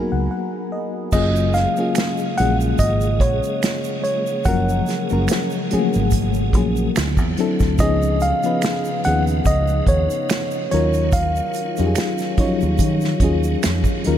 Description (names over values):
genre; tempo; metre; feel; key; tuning
R&B, neo-soul; 72 BPM; 4/4; swing 55% on 16ths; F# major; A4 = 440 Hz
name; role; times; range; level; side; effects
tine electric piano; melody; 0.0-14.0 s; C#5 to F#5; -24 LUFS; equal; diffuse ambient delay
FM electric piano with auto-pan; accompaniment; 0.0-14.2 s; E#3 to B5; -22 LUFS; left 3 dB; none
vintage muted fingered electric bass; bass; 0.1-14.2 s; F#1 to D#3; -21 LUFS; right 1 dB; none
tonewheel organ; sustained chords; 1.1-14.2 s; C#3 to G#4; -29 LUFS; right 2 dB; overdrive, chorus vibrato, fast rotary speaker
unplugged drum kit; drums; 1.1-14.2 s; crash cymbal, hi-hat, kick drum, snare drum; -23 LUFS; right 1 dB; none
egg shaker and finger snaps; percussion; 1.1-14.0 s; none; -34 LUFS; right 9 dB; none
room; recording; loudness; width
moderate huge ambient reverb, RT60 7.8 s; dreamy mix soaked in reverb; -17 LUFS; side -10 dB against mid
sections
0.0-1.1 A section; 1.1-14.2 B section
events
FM electric piano fill 0.0-1.1; break 0.3-1.1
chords
0.0 Bmaj7; 1.1 F#maj9; 7.0 D9; 7.8 C#9; 10.7 D#m9